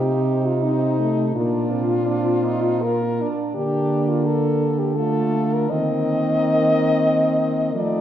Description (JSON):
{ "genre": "classical, lyrical piece for horn quartet", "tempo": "75-89 BPM", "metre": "3/4", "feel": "rubato", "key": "Bb major", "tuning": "A4 = 443 Hz", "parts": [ { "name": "warm French horn", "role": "melody", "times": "0.0-8.0 s", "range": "Eb4 to Eb5", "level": "-22 LUFS", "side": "left 2 dB", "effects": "none" }, { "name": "clear French horn", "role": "second line", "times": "0.0-8.0 s", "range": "C4 to F4", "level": "-26 LUFS", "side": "right 3 dB", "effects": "none" }, { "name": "warm French horn", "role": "accompaniment", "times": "0.0-8.0 s", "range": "A3 to C4", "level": "-26 LUFS", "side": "left 1 dB", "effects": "none" }, { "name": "mellow French horn", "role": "bass", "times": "0.0-8.0 s", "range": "Bb2 to F3", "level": "-23 LUFS", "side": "right 2 dB", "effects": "none" } ], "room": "wet concert hall reverb, RT60 2.0 s", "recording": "heard from further back in the room", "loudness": "-18 LUFS", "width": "side -10 dB against mid", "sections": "0.0-8.0 A section", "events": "none", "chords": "0.0 F7/C (rootless); 1.3 Bb; 3.6 Bb/D; 5.7 Cm7/Eb" }